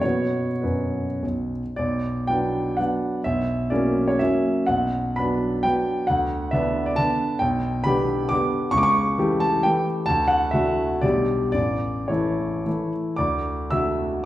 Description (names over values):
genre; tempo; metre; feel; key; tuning
classical, romantic triple-time dance for piano with dotted rhythms; 96-144 BPM; 3/4; rubato; B minor, D major from 7.4 s; A4 = 440 Hz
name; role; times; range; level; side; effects
warm grand piano; solo; 0.0-14.3 s; A1 to E6; -20 LUFS; equal; none
room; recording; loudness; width
wet recital hall reverb, RT60 1.4 s; heard from further back in the room; -20 LUFS; side -14 dB against mid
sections
0.0-1.8 A section; 1.8-13.2 B section; 13.2-14.3 A section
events
none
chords
0.0 B5; 1.8 Bm; 3.2 F#7/B; 4.7 Bm; 6.1 Bm/D; 7.4 G/B; 8.7 A7/C#; 10.1 D; 11.0 G/B; 11.5 A; 13.2 D